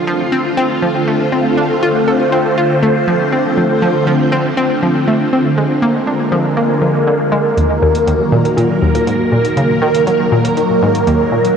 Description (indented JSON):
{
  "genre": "ambient, sequencer-driven space music",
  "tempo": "120 BPM",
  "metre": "4/4",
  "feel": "straight",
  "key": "Eb minor from 7.6 s",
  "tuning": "A4 = 440 Hz",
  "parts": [
    { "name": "phased string machine", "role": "sustained chords", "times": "0.0-11.6 s", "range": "D3 to C5", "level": "-13 LUFS", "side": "equal", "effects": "ensemble chorus, phaser" },
    { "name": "analog pluck", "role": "riff", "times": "0.0-11.5 s", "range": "Eb2 to A4", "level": "-16 LUFS", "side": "equal", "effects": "chorus, analog delay" },
    { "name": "electronic hi-hat and bongos", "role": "percussion", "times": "7.6-11.5 s", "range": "none", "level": "-28 LUFS", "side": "right 1 dB", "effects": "analog delay" }
  ],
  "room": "wet huge ambient reverb, RT60 9.2 s",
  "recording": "worn, warbling old tape, cassette tape, warbly pitch drift",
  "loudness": "-11 LUFS",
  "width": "side -7 dB against mid",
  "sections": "0.0-7.6 A section; 7.6-11.6 B section",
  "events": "none",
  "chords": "0.0 F6; 5.6 Bb7; 7.6 Ebm"
}